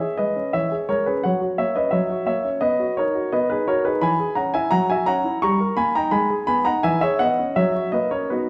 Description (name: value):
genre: classical-period piano sonatina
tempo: 86 BPM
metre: 2/4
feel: rubato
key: unclear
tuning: A4 = 440 Hz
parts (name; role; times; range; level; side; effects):
- warm grand piano; solo; 0.0-8.5 s; E3 to C#6; -21 LUFS; equal; none
room: wet recital hall reverb, RT60 1.6 s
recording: dark, warm production, vinyl crackle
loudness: -21 LUFS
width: mono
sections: 0.0-8.5 A section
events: none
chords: 0.0 C#m; 1.2 F#; 1.9 F#7; 2.6 B; 4.0 C#m/E; 4.7 F#7; 5.4 D#7/G; 6.1 G#m; 6.8 C#m7/E; 7.5 F#7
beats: 0.53 | 1.22 1.92 | 2.62 3.31 | 4.01 4.71 | 5.40 6.11 | 6.82 7.54 | 8.29